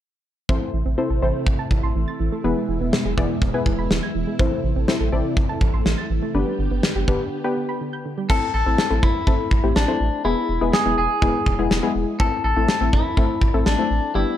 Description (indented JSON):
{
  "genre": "synth-pop",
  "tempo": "123 BPM",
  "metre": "4/4",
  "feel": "straight",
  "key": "A minor",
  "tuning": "A4 = 440 Hz",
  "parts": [
    { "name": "warbly dusty pluck", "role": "accompaniment", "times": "0.5-14.4 s", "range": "G3 to D5", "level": "-24 LUFS", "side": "left 4 dB", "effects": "chorus" },
    { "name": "ensemble organ-string", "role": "sustained chords", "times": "0.5-8.3 s", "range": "B2 to G4", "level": "-28 LUFS", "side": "equal", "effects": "phaser, ensemble chorus" },
    { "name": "soft round pluck", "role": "arpeggios", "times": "0.5-8.3 s", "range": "D3 to A6", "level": "-29 LUFS", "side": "right 6 dB", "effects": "chorus, tape echo" },
    { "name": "round analog bass", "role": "bass", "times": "0.5-14.2 s", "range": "E1 to A1", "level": "-23 LUFS", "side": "equal", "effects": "none" },
    { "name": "gated 80s drum kit", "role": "drums", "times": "0.5-13.8 s", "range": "crash cymbal, kick drum, snare drum", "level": "-22 LUFS", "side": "equal", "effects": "none" },
    { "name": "clean electric guitar", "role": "melody", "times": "8.3-14.4 s", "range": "D4 to A4", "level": "-23 LUFS", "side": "left 2 dB", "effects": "tape echo" }
  ],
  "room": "light reverb, small room ambience",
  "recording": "dark, warm production",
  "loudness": "-18 LUFS",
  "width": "side -11 dB against mid",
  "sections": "0.5-8.3 A section; 8.3-14.4 B section",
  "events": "break 7.3-8.3",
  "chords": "0.5 Am; 2.4 E; 4.4 Am; 6.3 G; 8.3 Am; 10.2 E; 12.2 Am"
}